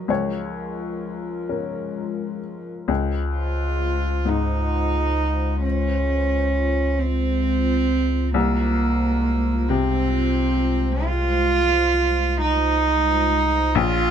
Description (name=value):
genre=neoclassical piano and strings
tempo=44 BPM (dotted quarters)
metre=6/8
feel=rubato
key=Db major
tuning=A4 = 439 Hz
part: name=warm cello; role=second line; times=0.0-14.1 s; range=F3 to F4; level=-22 LUFS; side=right 3 dB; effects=none
part: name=bright upright piano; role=accompaniment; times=0.0-14.1 s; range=Bb1 to Eb5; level=-27 LUFS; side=left 7 dB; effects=none
part: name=hollow soft pad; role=sustained chords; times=0.0-14.1 s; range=Ab3 to Db5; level=-31 LUFS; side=left 5 dB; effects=chorus
part: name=pure sine sub bass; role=bass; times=2.9-14.1 s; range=Bb1 to Db2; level=-23 LUFS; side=equal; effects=none
room=little or no reverb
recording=close, detailed microphones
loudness=-19 LUFS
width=side -8 dB against mid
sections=0.0-2.9 A section; 2.9-14.1 A section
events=none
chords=0.1 Db6; 2.9 Dbmaj7; 8.3 Fm7/C